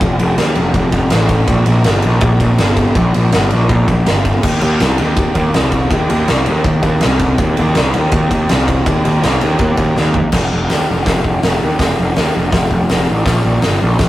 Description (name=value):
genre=garage rock duo or trio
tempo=163 BPM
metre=4/4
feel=straight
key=unclear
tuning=A4 = 440 Hz
part: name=fuzz picked electric bass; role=bass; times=0.0-14.1 s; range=F1 to Eb2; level=-13 LUFS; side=equal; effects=overdrive
part: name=oversized low-tuned drum kit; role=drums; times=0.0-14.1 s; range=crash cymbal, hi-hat, kick drum, ride cymbal, snare drum, toms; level=-16 LUFS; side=equal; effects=none
room=moderate small room reverb, RT60 0.5 s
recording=rough rehearsal-room recording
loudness=-11 LUFS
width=side -15 dB against mid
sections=0.0-10.3 A section; 10.3-14.1 B section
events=drum fill 10.0-10.3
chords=none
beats=| 0.01 0.38 0.75 1.12 | 1.49 1.86 2.23 2.60 | 2.97 3.34 3.71 4.08 | 4.45 4.82 5.19 5.55 | 5.92 6.29 6.66 7.03 | 7.40 7.77 8.13 8.50 | 8.87 9.23 9.60 9.97 | 10.33 10.70 11.06 11.43 | 11.80 12.16 12.53 12.90 | 13.27 13.63 14.00